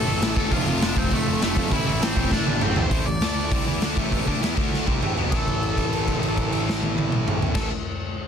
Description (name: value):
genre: punk rock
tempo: 199 BPM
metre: 4/4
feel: straight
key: A minor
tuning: A4 = 437 Hz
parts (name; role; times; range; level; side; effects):
- crunchy overdriven guitar; melody; 0.0-7.7 s; A3 to D5; -30 LUFS; equal; ping-pong delay
- distorted electric guitar; riff; 0.0-7.7 s; F2 to E4; -26 LUFS; equal; overdrive
- fuzz picked electric bass; bass; 0.0-7.7 s; E1 to E2; -28 LUFS; equal; overdrive
- raw garage drum kit; drums; 0.2-7.6 s; crash cymbal, hi-hat, kick drum, snare drum, toms; -24 LUFS; equal; none
room: little or no reverb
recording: dense, heavily limited modern master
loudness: -20 LUFS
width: side -8 dB against mid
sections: 0.0-2.9 A section; 2.9-5.3 B section; 5.3-7.7 C section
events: drum fill 2.3-2.9, 4.7-5.3; held note 5.3-7.6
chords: 0.0 A5; 0.5 F; 1.7 Am; 3.2 D5; 3.5 Am; 4.6 D5; 4.9 Am; 5.3 A5